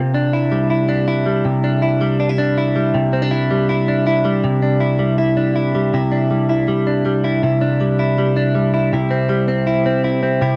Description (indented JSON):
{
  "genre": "indie pop",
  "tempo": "161 BPM",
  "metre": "4/4",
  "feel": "straight",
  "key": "C major",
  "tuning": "A4 = 440 Hz",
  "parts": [
    { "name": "direct-recorded clean electric guitar", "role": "solo", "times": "0.0-10.6 s", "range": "C3 to E4", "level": "-17 LUFS", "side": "equal", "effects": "subtle chorus, cassette tape" }
  ],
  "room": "wet studio reverb, RT60 0.6 s",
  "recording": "home recording on cassette",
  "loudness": "-17 LUFS",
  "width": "mono",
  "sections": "0.0-5.9 A section; 5.9-8.9 B section; 8.9-10.6 C section",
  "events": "none",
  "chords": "0.0 Cadd9",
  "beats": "0.34 0.71 1.08 | 1.46 1.83 2.20 2.57 | 2.95 3.32 3.69 4.07 | 4.44 4.81 5.18 5.56 | 5.93 6.30 6.68 7.05 | 7.42 7.80 8.17 8.55 | 8.92 9.29 9.67 10.04 | 10.41"
}